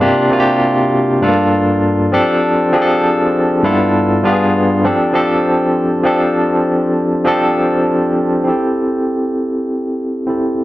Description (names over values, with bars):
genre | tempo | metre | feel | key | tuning
soul | 99 BPM | 4/4 | swing 54% on 16ths | F major | A4 = 440 Hz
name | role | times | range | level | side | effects
barky tine electric piano | solo | 0.0-10.6 s | G2 to A4 | -12 LUFS | equal | overdrive, fast tremolo, slapback echo
room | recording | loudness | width
light reverb | dry, close 1970s-style studio recording | -12 LUFS | side -16 dB against mid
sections
0.0-6.1 A section; 6.1-8.5 B section; 8.5-10.6 C section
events
none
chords
0.0 C7sus4; 1.2 Gm9; 2.1 F69; 3.6 G13; 4.2 G7b9; 4.9 F6; 8.5 Am7